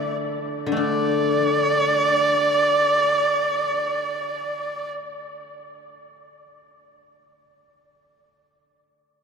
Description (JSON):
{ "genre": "chinese traditional, Chinese chamber ensemble", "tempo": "free time", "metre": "none", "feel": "none", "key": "unclear", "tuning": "A4 = 439 Hz", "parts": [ { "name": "clear erhu", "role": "melody", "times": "0.0-4.9 s", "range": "D5", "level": "-21 LUFS", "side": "right 2 dB", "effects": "none" }, { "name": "guzheng", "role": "accompaniment", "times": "0.0-7.3 s", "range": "D3 to A4", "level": "-25 LUFS", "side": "left 3 dB", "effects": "none" } ], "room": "wet cathedral reverb, RT60 6.0 s", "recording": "in a vast, echoing space", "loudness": "-19 LUFS", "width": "side -6 dB against mid", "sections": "0.8-6.1 A section", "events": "none", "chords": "none" }